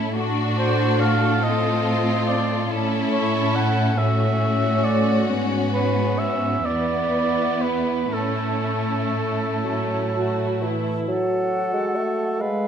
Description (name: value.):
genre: classical.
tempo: 39-48 BPM (dotted quarters).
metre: 6/8.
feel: rubato.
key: A major.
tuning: A4 = 440 Hz.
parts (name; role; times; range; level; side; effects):
rich symphonic violin section; melody; 0.0-10.9 s; E4 to A4; -31 LUFS; left 5 dB; none.
rich symphonic violin section; second line; 0.0-10.9 s; A3 to F#4; -26 LUFS; left 5 dB; none.
rich symphonic viola section; accompaniment; 0.0-11.1 s; A3 to F#4; -27 LUFS; right 1 dB; none.
rich symphonic cello section; bass; 0.0-10.9 s; E2 to A2; -24 LUFS; right 2 dB; none.
warm cor anglais; second line; 0.6-12.7 s; A4 to F#5; -26 LUFS; right 2 dB; none.
mellow bassoon; accompaniment; 9.6-12.7 s; E3 to A3; -25 LUFS; right 2 dB; none.
concert flute; second line; 11.1-12.7 s; F5 to F#5; -28 LUFS; left 2 dB; none.
dark clarinet; second line; 11.1-12.7 s; Ab3 to F#4; -28 LUFS; left 1 dB; none.
room: moderate concert hall reverb, RT60 2.0 s.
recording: none.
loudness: -19 LUFS.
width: side -8 dB against mid.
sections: 0.0-11.1 A section; 11.1-12.7 B section.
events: none.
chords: 0.2 Adim7; 2.7 A; 4.0 A6; 5.3 E69/G#; 6.7 E5; 8.1 A; 11.1 F#m.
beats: | 0.17 1.43 | 2.71 3.99 | 5.28 6.66 | 8.13 9.65 | 11.10 12.41.